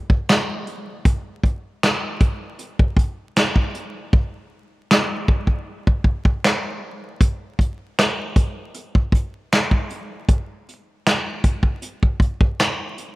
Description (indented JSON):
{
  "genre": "R&B",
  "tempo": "78 BPM",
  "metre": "4/4",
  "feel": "swing 54% on 16ths",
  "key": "none",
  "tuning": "none",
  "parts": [
    { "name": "vintage brush drum kit", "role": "drums", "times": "0.1-13.2 s", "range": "finger snaps, hi-hat, kick drum, snare drum", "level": "-17 LUFS", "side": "equal", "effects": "none" }
  ],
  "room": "light reverb",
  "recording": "rough home demo mix, vinyl crackle",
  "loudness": "-18 LUFS",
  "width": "side -20 dB against mid",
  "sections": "0.0-13.2 A section",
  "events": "hi-hats muted 4.1-7.2",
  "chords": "none",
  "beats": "0.28 | 1.05 1.82 2.59 3.36 | 4.13 4.90 5.67 6.44 | 7.21 7.98 8.74 9.52 | 10.28 11.05 11.82 12.59"
}